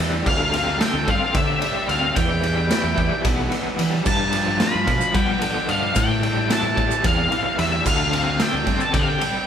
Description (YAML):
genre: psychedelic rock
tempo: 221 BPM (eighths)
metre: 7/8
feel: straight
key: unclear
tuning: A4 = 440 Hz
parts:
  - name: combo organ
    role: sustained chords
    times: 0.0-9.5 s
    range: E3 to B4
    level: -34 LUFS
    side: right 5 dB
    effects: none
  - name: overdriven semi-hollow guitar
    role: riff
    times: 0.0-9.5 s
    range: G2 to A4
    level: -25 LUFS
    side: left 1 dB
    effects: tremolo
  - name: fuzz fingered electric bass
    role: bass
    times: 0.0-9.2 s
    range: B1 to G3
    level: -25 LUFS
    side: equal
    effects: overdrive
  - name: raw garage drum kit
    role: drums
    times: 0.0-9.3 s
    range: crash cymbal, kick drum, ride cymbal, snare drum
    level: -23 LUFS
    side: right 1 dB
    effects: none
  - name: octave-fuzz lead guitar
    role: melody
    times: 0.3-9.5 s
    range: E5 to B5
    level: -23 LUFS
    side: left 1 dB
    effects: distortion
  - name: maracas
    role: percussion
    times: 4.1-8.9 s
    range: none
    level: -37 LUFS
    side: right 6 dB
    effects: none
room: moderate large studio reverb, RT60 1.1 s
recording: band playing live in one room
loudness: -18 LUFS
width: side -8 dB against mid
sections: 0.0-9.5 A section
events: none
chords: 0.3 D7sus4; 2.2 Em; 4.1 G7; 6.0 Am7; 7.9 D7sus4